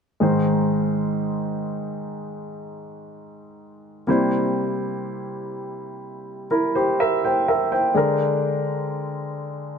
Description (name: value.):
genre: pop.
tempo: 62 BPM.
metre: 4/4.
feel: straight.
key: Ab major.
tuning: A4 = 440 Hz.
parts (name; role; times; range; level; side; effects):
clear baby grand piano; accompaniment; 0.2-9.8 s; Ab2 to G5; -21 LUFS; equal; none.
room: moderate lush hall reverb, RT60 2.8 s.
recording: none.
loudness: -20 LUFS.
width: side -6 dB against mid.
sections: 0.2-9.8 A section.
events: none.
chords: 0.2 Ab; 4.1 C7; 7.9 Bb7/D.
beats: | 0.20 1.17 2.14 3.11 | 4.08 5.04 6.01 6.98 | 7.95 8.91.